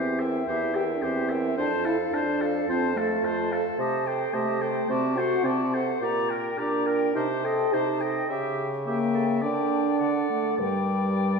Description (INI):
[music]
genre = quick classical-period movement for wind quintet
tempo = 107 BPM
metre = 4/4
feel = rubato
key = F major, G minor from 3.8 s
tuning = A4 = 440 Hz
[part]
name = silver concert flute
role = melody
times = 0.0-11.4 s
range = E5 to Bb5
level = -33 LUFS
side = left 6 dB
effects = none
[part]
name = clear oboe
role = second line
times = 0.0-11.4 s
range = A4 to E5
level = -32 LUFS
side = left 3 dB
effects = none
[part]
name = clear clarinet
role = accompaniment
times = 0.0-11.4 s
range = F4 to Bb4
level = -32 LUFS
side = right 4 dB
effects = none
[part]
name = warm French horn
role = accompaniment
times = 0.0-11.4 s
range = G3 to A4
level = -27 LUFS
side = equal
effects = none
[part]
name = warm bassoon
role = bass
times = 0.0-11.4 s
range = E2 to D3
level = -29 LUFS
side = right 3 dB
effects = none
[sound]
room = wet recital hall reverb, RT60 1.5 s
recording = heard from further back in the room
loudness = -23 LUFS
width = side -4 dB against mid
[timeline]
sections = 0.0-11.4 A section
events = none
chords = 0.0 C7/E; 1.6 F; 3.8 Am7b5/C; 4.9 D7/C; 6.0 Gm/Bb; 7.2 Am7b5/C; 8.3 C#dim7; 9.4 Gm/D; 10.0 D; 10.6 Gm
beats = 0.48 1.03 | 1.58 2.13 2.69 3.25 | 3.79 4.34 4.90 5.45 | 6.02 6.58 7.15 7.73 | 8.30 8.86 9.42 10.00 | 10.60 11.20